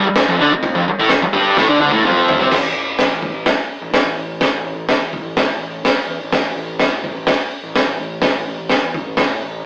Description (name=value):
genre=garage rock duo or trio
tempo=126 BPM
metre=4/4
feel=straight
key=unclear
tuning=A4 = 440 Hz
part: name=thick fuzz guitar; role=riff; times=0.0-2.5 s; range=F2 to D4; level=-16 LUFS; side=equal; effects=distortion
part: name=fuzz picked electric bass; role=bass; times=0.0-9.6 s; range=F1 to A2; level=-30 LUFS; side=equal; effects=overdrive
part: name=crunchy breakbeat drum kit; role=drums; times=0.2-9.3 s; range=crash cymbal, hi-hat, kick drum, snare drum, toms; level=-19 LUFS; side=equal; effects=none
room=light reverb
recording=rough rehearsal-room recording, tube saturation, AM radio sound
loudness=-17 LUFS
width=mono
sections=0.0-2.5 A section; 2.5-9.7 B section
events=drum fill 1.6-2.5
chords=0.0 F5; 2.5 N.C.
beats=0.16 | 0.63 1.10 1.57 2.04 | 2.51 2.99 3.46 3.94 | 4.41 4.89 5.36 5.84 | 6.32 6.79 7.27 7.75 | 8.23 8.71 9.18